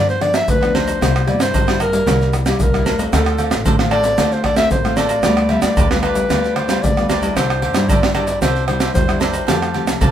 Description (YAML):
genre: samba and choro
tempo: 113 BPM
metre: 4/4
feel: straight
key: unclear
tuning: A4 = 439 Hz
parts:
  - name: clear clarinet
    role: melody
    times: 0.0-10.0 s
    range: G4 to E5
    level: -20 LUFS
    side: left 1 dB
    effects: none
  - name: nylon-string guitar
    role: accompaniment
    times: 0.0-10.1 s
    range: G2 to G4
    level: -22 LUFS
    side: left 2 dB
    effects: none
  - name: upright bass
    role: bass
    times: 0.0-10.1 s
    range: A1 to G2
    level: -22 LUFS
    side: equal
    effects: none
  - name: caixa, egg shaker, pandeiro, tamborim, agogo bells and surdo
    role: percussion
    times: 0.1-10.1 s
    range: none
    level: -18 LUFS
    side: right 1 dB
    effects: none
  - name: cavaquinho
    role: accompaniment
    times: 3.1-10.1 s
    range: D4 to A5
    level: -26 LUFS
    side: right 5 dB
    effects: none
room: light reverb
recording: minimal, uncompressed stereo recording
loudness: -14 LUFS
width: side -10 dB against mid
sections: 0.0-10.1 A section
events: none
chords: 0.0 G7; 1.0 C7; 3.1 Dm7; 5.2 G7/D; 7.4 Cadd9; 9.5 Fadd9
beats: 0.48 | 1.01 1.54 2.07 2.60 | 3.13 3.66 4.19 4.72 | 5.25 5.78 6.30 6.83 | 7.36 7.89 8.42 8.95 | 9.48 10.01